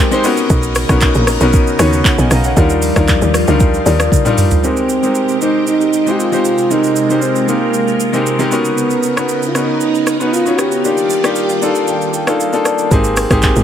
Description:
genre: amapiano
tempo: 116 BPM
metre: 4/4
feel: straight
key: unclear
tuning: A4 = 440 Hz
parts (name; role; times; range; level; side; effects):
- clear concert grand piano; accompaniment; 0.0-13.6 s; G3 to A#5; -16 LUFS; left 2 dB; none
- phased string machine; sustained chords; 0.0-12.9 s; C3 to D5; -21 LUFS; right 2 dB; ensemble chorus, phaser, sidechain pumping
- smooth R&B drum kit; drums; 0.1-13.6 s; handclaps, hi-hat, kick drum, rim click, shaker, toms; -16 LUFS; right 1 dB; none
- tight log drum bass; bass; 0.5-4.1, 12.9-13.6 s; G1 to D#2; -15 LUFS; equal; none
- mellow French horn; melody; 4.6-12.4 s; Bb3 to G4; -16 LUFS; right 2 dB; ping-pong delay
room: light reverb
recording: none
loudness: -11 LUFS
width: side -9 dB against mid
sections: 0.0-4.6 A section; 4.6-12.9 B section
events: drop 0.0-4.6; drum fill 4.1-4.6; kick muted 10.8-12.9; grand piano fill 11.4-12.9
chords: 0.2 Bmaj9; 2.6 Ebmaj9; 4.6 Abmaj9; 8.5 Bmaj9; 10.8 Ebmaj9; 12.9 Abmaj9

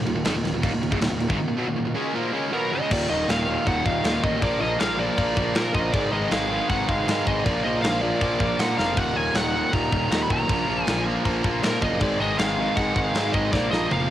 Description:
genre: heavy metal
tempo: 158 BPM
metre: 4/4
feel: straight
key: Eb harmonic minor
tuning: A4 = 438 Hz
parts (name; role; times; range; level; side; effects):
- pipe organ, strings celeste; sustained chords; 0.0-14.1 s; Eb3 to Gb5; -35 LUFS; left 1 dB; none
- crunchy overdriven guitar; riff; 0.0-14.1 s; Eb2 to Db4; -28 LUFS; equal; none
- heavy high-gain guitar; riff; 0.0-14.1 s; Eb2 to Db4; -31 LUFS; left 7 dB; distortion
- heavy high-gain guitar; riff; 0.0-14.1 s; Eb2 to Db4; -29 LUFS; right 7 dB; distortion
- fuzz picked electric bass; bass; 0.0-14.1 s; Eb1 to Bb2; -30 LUFS; equal; overdrive
- tight metal drum kit; drums; 0.1-14.0 s; crash cymbal, kick drum, snare drum, toms; -27 LUFS; equal; cassette tape
- high-gain lead guitar; melody; 2.5-14.1 s; Bb4 to Cb6; -26 LUFS; equal; distortion, cassette tape
room: light reverb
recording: home recording on cassette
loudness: -21 LUFS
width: side -12 dB against mid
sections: 0.0-2.9 A section; 2.9-14.1 B section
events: drum fill 8.8, 13.5-14.1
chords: 0.0 Ebm; 4.4 Bb; 5.9 Abm; 7.5 Bb; 9.0 Ebm; 10.5 Bb; 12.0 Abm; 13.5 Bb

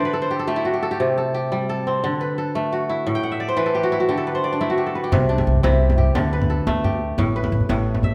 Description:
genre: west african traditional, West African string and xylophone music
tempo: 116 BPM (dotted quarters)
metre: 12/8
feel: straight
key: unclear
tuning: A4 = 440 Hz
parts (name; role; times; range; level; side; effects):
- kora; arpeggios; 0.0-8.1 s; A2 to G5; -23 LUFS; equal; none
- upright bass; bass; 5.1-8.1 s; A1 to D2; -22 LUFS; equal; none
- djembe; percussion; 5.1-8.1 s; none; -26 LUFS; equal; none
room: moderate recital hall reverb, RT60 1.4 s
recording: none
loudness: -21 LUFS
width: mono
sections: 0.0-5.1 A section; 5.1-8.1 B section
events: kora fill 0.0-1.0, 3.1-5.1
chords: 0.0 D5; 1.0 C5; 2.0 D; 3.1 A5; 4.1 D5; 5.1 C; 6.2 D5; 7.2 A5

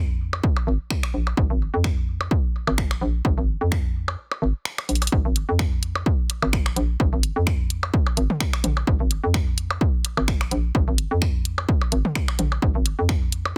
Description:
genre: minimal techno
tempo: 128 BPM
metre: 4/4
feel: swing 55% on 16ths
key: unclear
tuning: A4 = 440 Hz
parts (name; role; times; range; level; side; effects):
- hollow knocking FM bass; bass; 0.0-13.5 s; Ab1 to F2; -26 LUFS; equal; sidechain pumping
- electronic percussion blips and toms; percussion; 0.3-13.5 s; none; -30 LUFS; equal; tape echo
- electronic kick drum; drums; 0.4-13.2 s; none; -25 LUFS; equal; none
- techno drum kit; drums; 0.9-13.4 s; finger snaps, hi-hat; -30 LUFS; equal; overdrive, soft clipping on snare
room: little or no reverb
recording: dense, heavily limited modern master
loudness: -23 LUFS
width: mono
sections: 0.0-13.6 A section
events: kick drops out 4.2-5.1; drum fill 4.9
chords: none

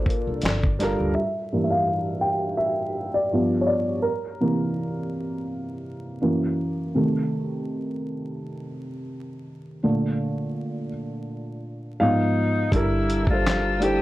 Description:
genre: lo-fi hip hop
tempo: 83 BPM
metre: 4/4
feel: swing 56% on 16ths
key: G dorian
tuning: A4 = 441 Hz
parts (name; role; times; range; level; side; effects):
- vibraphone with soft mallets; second line; 0.0-0.6 s; D4 to Bb4; -32 LUFS; left 4 dB; low-pass filter, tape echo
- dark upright piano; accompaniment; 0.0-14.0 s; F#2 to G5; -24 LUFS; equal; low-pass filter
- dusty soul sampler-style drum kit; drums; 0.1-1.0, 12.7-14.0 s; handclaps, hi-hat, kick drum, snare drum; -24 LUFS; equal; none
- upright bass; bass; 0.3-1.1, 12.7-14.0 s; G1 to D2; -28 LUFS; equal; none
- breathy tenor saxophone; melody; 12.0-14.0 s; Eb4 to G4; -25 LUFS; left 2 dB; low-pass filter
- warm symphonic string section; sustained chords; 12.7-14.0 s; Bb3 to E6; -38 LUFS; left 6 dB; low-pass filter
room: moderate studio reverb, RT60 0.5 s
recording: dark, warm production, vinyl crackle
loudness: -22 LUFS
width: side -16 dB against mid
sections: 0.0-1.2 A section; 1.2-12.7 B section; 12.7-14.0 C section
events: upright piano solo 1.2-12.7; filter sweep on upright piano 1.2-12.7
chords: 0.4 Gm7; 1.2 Gm6; 3.3 G7; 4.0 C7; 6.2 F#7; 6.9 Cm6; 9.8 Bbmaj7; 12.0 Abm6; 12.7 Gm69

